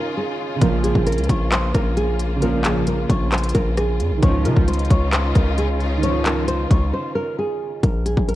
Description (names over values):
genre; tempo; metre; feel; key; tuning
hip hop, trap; 133 BPM; 4/4; half-time; unclear; A4 = 439 Hz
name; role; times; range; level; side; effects
nylon-string guitar; melody; 0.0-8.4 s; Ab4 to Db5; -24 LUFS; right 1 dB; low-pass filter
felt-muted upright piano; accompaniment; 0.0-7.9 s; Db3 to F4; -27 LUFS; right 4 dB; low-pass filter
warm symphonic string section; sustained chords; 0.0-7.8 s; Db3 to F4; -29 LUFS; left 2 dB; none
analog synth brass; stabs; 0.6-6.5 s; Db2 to F3; -26 LUFS; left 1 dB; chorus, ping-pong delay
distorted 808-style bass; bass; 0.6-8.4 s; Bb1 to Db3; -21 LUFS; equal; distortion
trap drum kit; drums; 0.6-8.3 s; handclaps, hi-hat, kick drum, rim click; -20 LUFS; left 1 dB; none
room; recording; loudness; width
studio reverb; worn, warbling old tape, cassette tape, warbly pitch drift; -17 LUFS; side -15 dB against mid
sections
0.0-7.8 A section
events
break 6.9-7.8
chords
0.0 Dbadd9; 0.6 Bbm; 4.2 Dbadd9; 7.8 N.C.